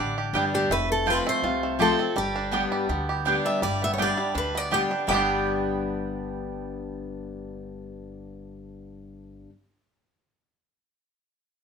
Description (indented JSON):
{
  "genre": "bluegrass",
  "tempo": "165 BPM",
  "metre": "4/4",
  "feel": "swing 54% on 8ths",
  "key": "G mixolydian",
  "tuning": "A4 = 439 Hz",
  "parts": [
    { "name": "picked steel-string acoustic guitar", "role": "melody", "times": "0.0-9.5 s", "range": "G4 to G5", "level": "-28 LUFS", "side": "equal", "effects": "none" },
    { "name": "picked steel-string acoustic guitar", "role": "accompaniment", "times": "0.0-9.5 s", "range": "F2 to G4", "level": "-30 LUFS", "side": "left 4 dB", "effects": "none" },
    { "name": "bluegrass banjo", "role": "arpeggios", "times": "0.0-9.5 s", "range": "G3 to G4", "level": "-29 LUFS", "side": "right 4 dB", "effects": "none" },
    { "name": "upright bass", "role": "bass", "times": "0.0-9.5 s", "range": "F1 to D2", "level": "-36 LUFS", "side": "equal", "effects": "none" },
    { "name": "mandolin", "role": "stabs", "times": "0.3-9.5 s", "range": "B3 to A5", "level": "-28 LUFS", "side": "right 4 dB", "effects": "none" }
  ],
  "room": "wet studio reverb, RT60 0.5 s",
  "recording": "minimal, uncompressed stereo recording",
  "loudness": "-23 LUFS",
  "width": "side -6 dB against mid",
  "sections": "0.0-3.6 A section; 3.6-5.1 B section; 5.1-8.0 C section",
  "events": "none",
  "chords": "0.0 G; 0.7 F; 2.2 G"
}